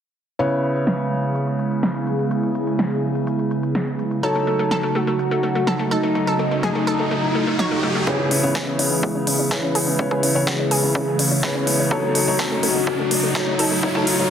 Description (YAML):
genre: progressive house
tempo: 125 BPM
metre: 4/4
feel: straight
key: C# minor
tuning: A4 = 440 Hz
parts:
  - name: airy breathy pad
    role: sustained chords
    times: 0.4-14.3 s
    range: C#3 to D#5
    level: -24 LUFS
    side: right 2 dB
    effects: chorus, sidechain pumping
  - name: felt-muted upright piano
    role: stabs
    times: 0.4-14.3 s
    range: C#3 to C#5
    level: -24 LUFS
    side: left 1 dB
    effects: sidechain pumping, dub echo
  - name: big-room dance drum kit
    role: drums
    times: 0.4-14.2 s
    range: hi-hat, snare drum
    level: -24 LUFS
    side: equal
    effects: overdrive, high-pass filter on hats, low-pass filter on hats, high-pass filter on snare, low-pass filter on snare
  - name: expressive synth lead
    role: melody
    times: 4.2-14.2 s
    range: D#4 to B4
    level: -25 LUFS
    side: left 1 dB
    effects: lush chorus, sidechain pumping, dub echo
  - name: analog pluck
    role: arpeggios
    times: 4.2-14.3 s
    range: A3 to C#5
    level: -26 LUFS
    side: equal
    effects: chorus, sidechain pumping, dub echo
  - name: riser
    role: sound effects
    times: 5.9-14.3 s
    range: none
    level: -28 LUFS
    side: right 1 dB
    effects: none
  - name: dark detuned saw bass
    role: bass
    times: 8.1-14.3 s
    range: none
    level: barely audible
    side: none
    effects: none
  - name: electronic kick drum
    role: drums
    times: 8.1-14.0 s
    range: none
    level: -28 LUFS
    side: equal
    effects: overdrive, high-pass filter on kick
room: moderate lush hall reverb, RT60 2.3 s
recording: dense, heavily limited modern master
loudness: -18 LUFS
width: side -8 dB against mid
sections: 0.4-8.1 A section; 8.1-14.3 B section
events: filter sweep on analog synth pad 0.4-8.1; riser 5.9-8.1, 8.1-14.3; build-up 8.1-14.3; filter sweep on synth pluck 8.1-14.3; filter sweep on analog synth lead 8.1-14.3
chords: 0.4 C#m7; 4.2 D#m7b5; 8.1 C#m7; 11.9 D#m7b5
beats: | 0.39 0.87 1.35 1.83 | 2.31 2.79 3.27 3.75 | 4.23 4.71 5.19 5.67 | 6.15 6.63 7.11 7.59 | 8.07 8.55 9.03 9.51 | 9.99 10.47 10.95 11.43 | 11.91 12.39 12.87 13.35 | 13.83